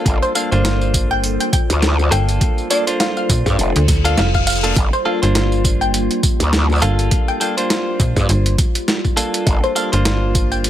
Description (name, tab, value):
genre	glitch hop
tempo	102 BPM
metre	4/4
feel	swing 57% on 16ths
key	G minor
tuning	A4 = 441 Hz
part	warbly tape-like pad	sustained chords	0.0-10.7 s	G3 to C5	-25 LUFS	equal	chorus, built-in reverb, vintage 12-bit sampler grit, sidechain pumping
part	direct-recorded clean electric guitar	stabs	0.0-10.7 s	Bb3 to C5	-22 LUFS	equal	vintage 12-bit sampler grit, sidechain pumping, digital delay
part	growl bass	bass	0.1-9.6 s	F1 to G2	-16 LUFS	equal	chorus, overdrive
part	boom bap sampler-style drum kit	drums	0.1-10.7 s	hi-hat, snare drum, tambourine	-21 LUFS	right 1 dB	overdrive
part	electronic kick drum	drums	0.1-10.5 s	none	-18 LUFS	equal	overdrive
part	woody wave-folded pluck	melody	0.2-10.7 s	C5 to G5	-23 LUFS	left 1 dB	lush chorus, digital delay
part	slap-like FM bass	bass	0.5-10.7 s	F1 to D2	-17 LUFS	equal	none
part	reverse cymbal	sound effects	3.8-4.8 s	none	-26 LUFS	left 6 dB	none
room	digital ambience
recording	none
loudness	-14 LUFS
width	side -12 dB against mid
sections	0.0-10.7 A section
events	reverse cymbal 3.8-4.8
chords	0.0 Gm9